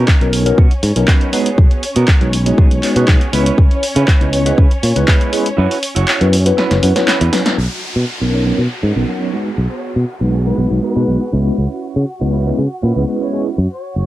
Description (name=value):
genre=filtered disco house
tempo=120 BPM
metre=4/4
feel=straight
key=B major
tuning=A4 = 440 Hz
part: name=rich studio string section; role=sustained chords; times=0.0-14.1 s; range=C#4 to F#5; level=-26 LUFS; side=left 1 dB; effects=sidechain pumping, low-pass filter, cassette tape
part: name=clean electric guitar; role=riff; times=0.0-13.6 s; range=B3 to C#5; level=-24 LUFS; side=right 9 dB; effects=sidechain pumping, low-pass filter, cassette tape
part: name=modern bright fingered electric bass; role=bass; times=0.0-14.0 s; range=F#1 to C#3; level=-15 LUFS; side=equal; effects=sidechain pumping, low-pass filter
part: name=electronic kick drum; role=drums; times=0.1-5.2 s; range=none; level=-10 LUFS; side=equal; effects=none
part: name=punchy analog drum machine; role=drums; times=0.1-7.6 s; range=handclaps, hi-hat, snare drum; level=-18 LUFS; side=equal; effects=overdrive, sidechain pumping on hats, low-pass filter on hats, low-pass filter on snare, low-pass filter on room
part: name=bright tine electric piano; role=accompaniment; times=0.2-13.5 s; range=F#3 to B4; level=-18 LUFS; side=left 1 dB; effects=medium stereo tremolo, phaser, sidechain pumping, low-pass filter, cassette tape
part: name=downlifter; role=sound effects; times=7.6-11.6 s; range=none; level=-28 LUFS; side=equal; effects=none
part: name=mellow trumpet section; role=melody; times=9.2-14.1 s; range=B4 to C#5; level=-28 LUFS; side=left 2 dB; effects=sidechain pumping, low-pass filter, cassette tape
room=light reverb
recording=home recording on cassette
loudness=-12 LUFS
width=side -15 dB against mid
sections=0.0-7.6 A section; 7.6-14.1 B section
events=kick drops out 5.6-7.6; drum fill 6.6-7.6; band accent 7.5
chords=0.0 Bmaj9; 3.3 C#m7; 5.6 F#7sus4; 7.6 Bmaj9; 9.3 G#m7/B; 11.3 C#m7